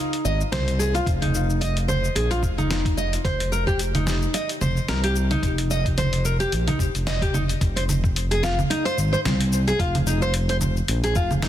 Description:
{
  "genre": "organic downtempo",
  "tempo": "110 BPM",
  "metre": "4/4",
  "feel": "swing 56% on 16ths",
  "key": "F minor",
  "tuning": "A4 = 440 Hz",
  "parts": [
    { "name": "nylon-string guitar", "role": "arpeggios", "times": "0.0-11.5 s", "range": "Eb4 to Eb5", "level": "-25 LUFS", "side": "equal", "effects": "ping-pong delay" },
    { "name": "dusty soul sampler-style drum kit", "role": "drums", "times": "0.1-11.5 s", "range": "congas, hi-hat, shaker, snare drum", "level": "-27 LUFS", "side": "right 1 dB", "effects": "none" },
    { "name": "smooth gliding synth bass", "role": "bass", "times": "0.2-11.5 s", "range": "F1 to C2", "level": "-24 LUFS", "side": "equal", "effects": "sidechain pumping" },
    { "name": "electronic kick drum", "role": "drums", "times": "1.1-11.3 s", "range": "none", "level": "-23 LUFS", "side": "equal", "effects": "none" }
  ],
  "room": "light reverb",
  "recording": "dense, heavily limited modern master",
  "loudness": "-20 LUFS",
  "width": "side -12 dB against mid",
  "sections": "0.0-7.6 A section; 7.6-11.5 B section",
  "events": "none",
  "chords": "0.0 Fm7; 3.2 Cm7/F; 7.6 Fm"
}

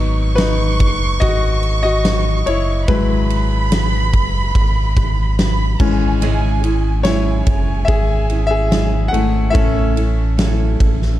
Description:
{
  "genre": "pop ballad",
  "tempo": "72 BPM",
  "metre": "4/4",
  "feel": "straight",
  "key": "unclear",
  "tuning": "A4 = 441 Hz",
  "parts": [
    { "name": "warm studio violin section", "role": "second line", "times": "0.0-9.5 s", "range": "G#5 to C#6", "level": "-25 LUFS", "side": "right 3 dB", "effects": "ping-pong delay" },
    { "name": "bright concert grand piano", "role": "accompaniment", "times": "0.0-11.2 s", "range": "E3 to F#5", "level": "-21 LUFS", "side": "left 4 dB", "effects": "none" },
    { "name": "sub bass with octave", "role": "bass", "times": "0.0-11.2 s", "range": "F#1 to A1", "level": "-18 LUFS", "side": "equal", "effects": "none" },
    { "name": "huge arena drum kit", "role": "drums", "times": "0.4-11.1 s", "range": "crash cymbal, kick drum, ride cymbal, snare drum", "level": "-19 LUFS", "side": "equal", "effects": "none" },
    { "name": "fingerpicked steel-string acoustic guitar", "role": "arpeggios", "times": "6.2-11.2 s", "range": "G#2 to A4", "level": "-24 LUFS", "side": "right 5 dB", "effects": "none" }
  ],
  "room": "small room ambience",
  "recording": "dark, warm production",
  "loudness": "-14 LUFS",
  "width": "side -14 dB against mid",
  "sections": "0.0-11.2 A section",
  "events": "grand piano solo 0.0-11.2",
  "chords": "0.0 G#m7; 2.9 Eadd9; 5.8 C#m; 9.5 A"
}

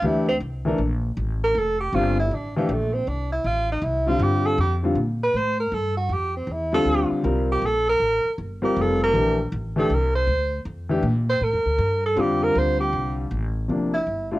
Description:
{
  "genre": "jazz",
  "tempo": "158 BPM",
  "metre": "4/4",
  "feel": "swing 65% on 8ths",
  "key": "F major",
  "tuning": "A4 = 435 Hz",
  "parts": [
    { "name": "mellow tenor saxophone", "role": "melody", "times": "0.0-14.3 s", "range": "F3 to C5", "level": "-23 LUFS", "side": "right 2 dB", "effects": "none" },
    { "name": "warm concert grand piano", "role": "accompaniment", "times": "0.0-14.4 s", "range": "C3 to Bb4", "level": "-23 LUFS", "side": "left 2 dB", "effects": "cassette tape" },
    { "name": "upright bass", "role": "bass", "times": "0.0-14.4 s", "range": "F1 to Bb2", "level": "-26 LUFS", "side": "equal", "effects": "none" }
  ],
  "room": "studio reverb",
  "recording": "home recording on cassette",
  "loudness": "-20 LUFS",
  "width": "side -17 dB against mid",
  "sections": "0.0-13.7 A section",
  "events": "tenor saxophone solo 0.0-13.7",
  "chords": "0.0 Fadd9; 13.7 Fmaj7sus2"
}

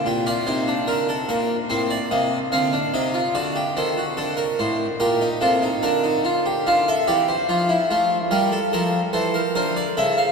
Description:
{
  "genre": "classical, baroque-style 3-part fugue for harpsichord",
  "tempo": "73 BPM",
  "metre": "4/4",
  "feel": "straight",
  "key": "G minor",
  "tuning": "A4 = 439 Hz",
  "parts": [
    { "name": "harpsichord", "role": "solo", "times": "0.0-10.3 s", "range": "A2 to F5", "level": "-19 LUFS", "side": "equal", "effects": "none" }
  ],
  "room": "wet cathedral reverb, RT60 6.5 s",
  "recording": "none",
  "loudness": "-19 LUFS",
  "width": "side -5 dB against mid",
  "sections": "0.0-10.3 A section",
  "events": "none",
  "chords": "0.1 Gm/Bb; 1.7 Adim; 3.4 D7; 5.0 Gm/Bb; 6.7 Dm; 8.3 Edim"
}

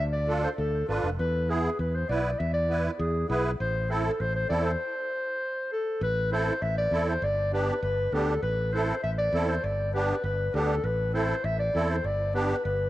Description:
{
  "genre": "latin, cumbia",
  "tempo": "199 BPM",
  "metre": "4/4",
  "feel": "straight",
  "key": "A harmonic minor, A minor from 6.0 s",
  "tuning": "A4 = 440 Hz",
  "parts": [
    { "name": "warm clarinet", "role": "melody", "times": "0.0-12.9 s", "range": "G#4 to E5", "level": "-28 LUFS", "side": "left 1 dB", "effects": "tape echo" },
    { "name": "fingered electric bass", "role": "bass", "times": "0.0-12.9 s", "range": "F1 to E2", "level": "-29 LUFS", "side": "equal", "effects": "none" },
    { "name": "musette accordion", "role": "accompaniment", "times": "0.3-12.6 s", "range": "B3 to B4", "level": "-31 LUFS", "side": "right 2 dB", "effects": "cassette tape" }
  ],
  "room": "light reverb, small room reverb",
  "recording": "home recording on cassette",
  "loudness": "-25 LUFS",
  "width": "side -15 dB against mid",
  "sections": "0.0-6.0 A section; 6.0-12.9 B section",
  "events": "stop 4.8-6.0",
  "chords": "0.0 Dm; 1.2 E7; 3.6 Am; 7.2 G; 8.4 Am; 9.6 G; 10.8 Am; 12.0 G"
}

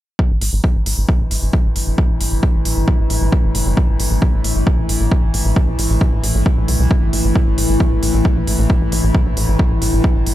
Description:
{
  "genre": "driving peak-time techno",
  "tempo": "134 BPM",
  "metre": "4/4",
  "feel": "straight",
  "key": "unclear",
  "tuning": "A4 = 439 Hz",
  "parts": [
    { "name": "metallic inharmonic drone", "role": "drone", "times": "0.9-10.3 s", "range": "A2 to E3", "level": "-21 LUFS", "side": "left 2 dB", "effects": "chorus, built-in reverb, sidechain pumping" },
    { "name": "electronic kick drum", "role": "drums", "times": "0.2-10.1 s", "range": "none", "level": "-15 LUFS", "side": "equal", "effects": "none" },
    { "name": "tight sequencer bass", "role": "bass", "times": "0.3-10.3 s", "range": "G1 to C2", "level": "-18 LUFS", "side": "equal", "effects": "sidechain pumping" },
    { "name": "electronic hi-hat", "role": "drums", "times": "0.4-10.3 s", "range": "none", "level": "-24 LUFS", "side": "right 1 dB", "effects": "overdrive, sidechain pumping on hats" }
  ],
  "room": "little or no reverb",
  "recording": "dry, gritty hardware recording",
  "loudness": "-14 LUFS",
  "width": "side -14 dB against mid",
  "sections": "0.2-10.3 A section",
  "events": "none",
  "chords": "0.2 A5"
}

